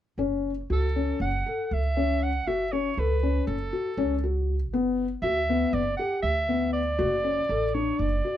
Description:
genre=contemporary instrumental, chamber music in an uneven meter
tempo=239 BPM (eighths)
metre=9/8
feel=straight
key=F# phrygian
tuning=A4 = 444 Hz
part: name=felt-muted upright piano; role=arpeggios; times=0.2-8.4 s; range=B3 to A4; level=-28 LUFS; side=left 4 dB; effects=none
part: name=upright bass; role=bass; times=0.2-8.2 s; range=F#1 to D2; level=-29 LUFS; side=right 1 dB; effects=none
part: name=warm soprano saxophone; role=melody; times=0.7-8.4 s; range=A4 to F#5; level=-29 LUFS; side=right 2 dB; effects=none
room=little or no reverb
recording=dark, warm production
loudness=-24 LUFS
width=side -11 dB against mid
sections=0.2-8.4 A section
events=none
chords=0.2 F#m; 4.7 Gmaj7/F#; 7.0 D/F#

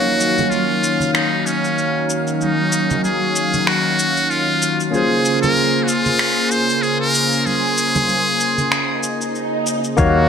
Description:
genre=sunset chillout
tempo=95 BPM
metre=4/4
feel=swing 56% on 16ths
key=unclear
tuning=A4 = 441 Hz
part: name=trumpet with metal mute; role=melody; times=0.0-10.3 s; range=Db4 to C5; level=-18 LUFS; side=equal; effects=digital delay
part: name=barky tine electric piano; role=accompaniment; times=0.0-10.3 s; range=Gb3 to F5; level=-22 LUFS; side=moving between left 4 dB and right 6 dB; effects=auto-pan, low-pass filter
part: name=lush unison pad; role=sustained chords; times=0.0-9.9 s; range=Db3 to F5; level=-21 LUFS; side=left 1 dB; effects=chorus
part: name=electronic shaker and finger snaps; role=drums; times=0.2-10.1 s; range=none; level=-23 LUFS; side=left 1 dB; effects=overdrive, gated reverb
part: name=congas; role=percussion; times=0.4-10.1 s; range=none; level=-27 LUFS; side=right 3 dB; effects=none
part: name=swell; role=sound effects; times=8.9-10.0 s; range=none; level=-25 LUFS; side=right 2 dB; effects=none
part: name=mellow fretless electric bass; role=bass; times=10.0-10.3 s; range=Eb2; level=-17 LUFS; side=equal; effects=none
part: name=electronic kick drum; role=drums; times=10.0-10.1 s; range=none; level=-18 LUFS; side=equal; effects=overdrive
room=moderate plate reverb, RT60 1.4 s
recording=bright 1980s-style digital production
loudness=-15 LUFS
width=side -7 dB against mid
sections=0.0-10.0 A section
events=filter sweep on tine electric piano 0.0-10.0; swell 8.9-10.0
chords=0.0 Ebm9; 4.9 Bbm9

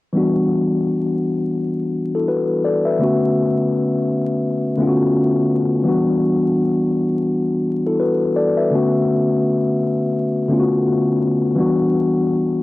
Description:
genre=hip hop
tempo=84 BPM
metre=4/4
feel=swing 60% on 16ths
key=E minor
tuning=A4 = 440 Hz
part: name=mellow tine electric piano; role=solo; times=0.1-12.6 s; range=D3 to E5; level=-16 LUFS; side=left 1 dB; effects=medium stereo tremolo, high-pass filter, low-pass filter, cassette tape
room=light reverb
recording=home recording on cassette, vinyl crackle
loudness=-16 LUFS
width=side -18 dB against mid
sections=0.1-11.6 A section; 11.6-12.6 B section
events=none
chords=0.1 Em9; 3.0 Bm9; 5.9 Em9; 8.7 Bm9; 11.6 Em9

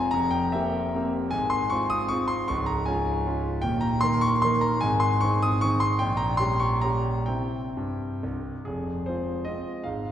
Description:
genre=classical, romantic triple-time dance for piano with dotted rhythms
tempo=122-164 BPM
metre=3/4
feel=rubato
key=F minor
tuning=A4 = 439 Hz
part: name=clear concert grand piano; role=solo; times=0.0-10.1 s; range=Db1 to Eb6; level=-23 LUFS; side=equal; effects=none
room=wet concert hall reverb, RT60 2.1 s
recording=heard from further back in the room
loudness=-23 LUFS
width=side -10 dB against mid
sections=0.0-8.7 A section; 8.7-10.1 B section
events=none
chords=0.1 C7/F; 1.3 Fm/Ab; 2.5 Db; 3.6 Eb5; 4.8 Ab; 6.0 Gdim/Bb; 7.3 C; 8.7 Fm

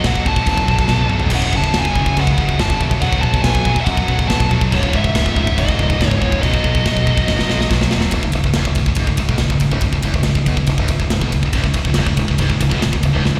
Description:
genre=heavy metal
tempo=141 BPM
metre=4/4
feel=straight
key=C# minor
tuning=A4 = 438 Hz
part: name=high-gain lead guitar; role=melody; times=0.0-7.7 s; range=C#5 to A5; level=-24 LUFS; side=equal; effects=distortion, slapback echo, digital delay
part: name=heavy high-gain guitar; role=riff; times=0.0-13.4 s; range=C#2 to F#3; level=-23 LUFS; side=equal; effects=distortion, slapback echo
part: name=scooped high-gain guitar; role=riff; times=0.0-8.1, 11.5-13.4 s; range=C#2 to B3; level=-25 LUFS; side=equal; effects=distortion, slapback echo
part: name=growling fingered electric bass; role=bass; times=0.0-13.4 s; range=C#1 to F#2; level=-22 LUFS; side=equal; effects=overdrive
part: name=tight metal drum kit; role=drums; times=0.0-13.4 s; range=china cymbal, crash cymbal, kick drum, ride cymbal, snare drum, toms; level=-21 LUFS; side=equal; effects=none
room=little or no reverb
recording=live gig heard through the venue's PA, recital hall reverb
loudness=-16 LUFS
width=mono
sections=0.0-8.1 A section; 8.1-13.4 B section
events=drum fill 0.9-1.3, 7.3-8.1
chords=0.0 B5; 1.3 F#5; 3.0 B5; 4.7 C#m; 6.4 B; 8.1 C#m

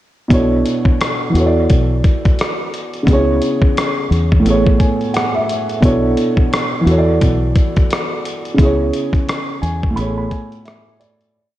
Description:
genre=lo-fi hip hop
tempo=87 BPM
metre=4/4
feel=swing 61% on 16ths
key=unclear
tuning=A4 = 440 Hz
part: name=dark upright piano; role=accompaniment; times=0.3-11.4 s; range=A2 to B5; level=-16 LUFS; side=right 1 dB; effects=none
part: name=deep dub fingered electric bass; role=bass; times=0.3-10.3 s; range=A1 to E2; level=-17 LUFS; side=equal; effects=none
part: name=dusty soul sampler-style drum kit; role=drums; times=0.3-11.3 s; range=hi-hat, kick drum, rim click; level=-16 LUFS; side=equal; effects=none
room=moderate lush hall reverb, RT60 2.6 s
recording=dreamy mix soaked in reverb, cassette tape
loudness=-13 LUFS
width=side -14 dB against mid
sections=0.3-11.3 A section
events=upright piano fill 4.4-5.8, 9.3-11.3; fade-out 8.6-11.3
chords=0.3 Bm11; 1.3 E9sus4; 3.1 C#m7; 4.4 Amaj9; 5.8 Bm11; 6.9 E9sus4; 8.6 C#m7; 10.0 Amaj9

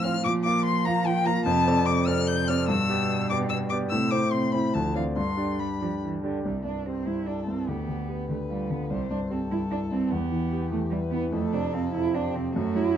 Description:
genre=quick classical-period movement for piano trio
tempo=147 BPM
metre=3/4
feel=straight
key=C major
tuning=A4 = 441 Hz
part: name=rich violin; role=melody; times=0.0-13.0 s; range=F#4 to G6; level=-30 LUFS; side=left 4 dB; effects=none
part: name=warm cello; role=second line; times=0.0-13.0 s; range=B2 to E4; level=-29 LUFS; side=right 6 dB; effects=none
part: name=clear concert grand piano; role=accompaniment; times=0.0-13.0 s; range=C2 to F5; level=-27 LUFS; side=left 1 dB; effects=none
room=light reverb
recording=dark, warm production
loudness=-24 LUFS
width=side -9 dB against mid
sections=0.0-6.4 A section; 6.4-13.0 B section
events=none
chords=0.2 Bb5; 1.5 Dm7/F; 2.7 G; 3.9 Am; 4.7 Dm7; 5.2 G; 6.4 C; 7.7 G7/D; 8.9 C; 10.1 Em; 11.3 F

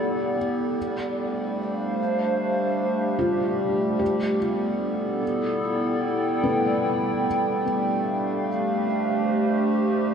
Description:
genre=ambient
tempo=free time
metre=none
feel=none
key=unclear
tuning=A4 = 440 Hz
part: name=warbly tape-like pad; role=sustained chords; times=0.0-10.1 s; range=A3 to G5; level=-23 LUFS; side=right 1 dB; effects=chorus, built-in reverb, shimmer reverb
part: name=felt-muted upright piano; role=arpeggios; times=0.0-7.6 s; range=B3 to G4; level=-31 LUFS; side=left 1 dB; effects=diffuse ambient delay, shimmer reverb
part: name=hand-pumped harmonium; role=drone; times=0.0-10.1 s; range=G3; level=-31 LUFS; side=left 1 dB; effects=none
room=wet cathedral reverb, RT60 5.5 s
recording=dark, warm production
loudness=-22 LUFS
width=side -7 dB against mid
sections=0.0-10.1 A section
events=none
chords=0.0 Em7; 0.8 G5; 4.0 Em7; 7.3 G5

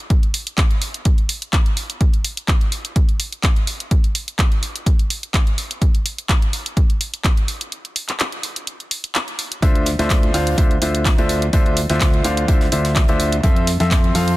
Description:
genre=piano house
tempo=126 BPM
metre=4/4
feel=swing 54% on 16ths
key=D minor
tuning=A4 = 440 Hz
part: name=electronic kick drum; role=drums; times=0.1-14.0 s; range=none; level=-16 LUFS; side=equal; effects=small room ambience
part: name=garage drum kit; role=drums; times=0.1-14.4 s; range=handclaps, hi-hat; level=-23 LUFS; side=equal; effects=small room ambience, soft clipping on snare
part: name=clear baby grand piano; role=riff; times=9.6-14.4 s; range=D3 to F5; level=-20 LUFS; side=equal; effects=sidechain pumping
part: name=fingered electric bass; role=bass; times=9.6-14.4 s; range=D2 to F2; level=-21 LUFS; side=equal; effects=sidechain pumping
part: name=modern studio drum kit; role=drums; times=9.6-14.3 s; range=hi-hat, snare drum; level=-34 LUFS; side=right 3 dB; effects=none
room=small room ambience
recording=dense, heavily limited modern master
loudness=-16 LUFS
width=side -18 dB against mid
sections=0.0-14.4 A section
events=break 7.7-9.6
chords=0.0 N.C.; 9.6 Dm9; 13.4 Fmaj7

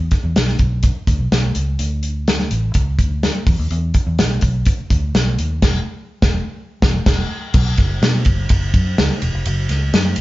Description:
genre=uptempo 1960s-style soul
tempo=125 BPM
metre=4/4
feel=straight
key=unclear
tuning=A4 = 440 Hz
part: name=vintage muted fingered electric bass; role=bass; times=0.0-10.2 s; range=E1 to B2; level=-19 LUFS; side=equal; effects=none
part: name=natural country drum kit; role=drums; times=0.1-10.2 s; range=crash cymbal, hi-hat, kick drum, ride cymbal, snare drum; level=-17 LUFS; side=equal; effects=none
room=moderate stone room reverb, RT60 1.0 s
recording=band playing live in one room, nothing above 7.5 kHz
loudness=-15 LUFS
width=side -17 dB against mid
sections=0.0-7.5 A section; 7.5-10.2 B section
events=band accent 5.6-7.5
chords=none

